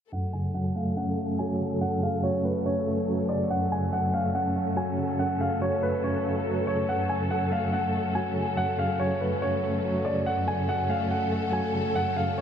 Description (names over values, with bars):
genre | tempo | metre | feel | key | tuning
hip hop | 142 BPM | 4/4 | half-time | F# minor | A4 = 440 Hz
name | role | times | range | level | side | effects
dark concert grand piano | melody | 0.1-12.4 s | B4 to G#5 | -29 LUFS | equal | low-pass filter, ping-pong delay
mellow tine electric piano | accompaniment | 0.1-12.4 s | F#2 to C#4 | -28 LUFS | right 1 dB | medium tremolo, low-pass filter
warm symphonic string section | sustained chords | 0.1-12.4 s | F#3 to A4 | -32 LUFS | left 1 dB | low-pass filter
room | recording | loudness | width
wet huge ambient reverb, RT60 5.3 s | dreamy mix soaked in reverb | -24 LUFS | side -8 dB against mid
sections
0.1-12.4 A section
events
filter sweep 0.1-12.4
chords
0.1 F#m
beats
| 0.12 0.55 0.97 1.39 | 1.81 2.24 2.66 3.08 | 3.50 3.93 4.35 4.77 | 5.19 5.62 6.04 6.46 | 6.88 7.31 7.73 8.15 | 8.57 9.00 9.42 9.84 | 10.27 10.69 11.11 11.53 | 11.96 12.38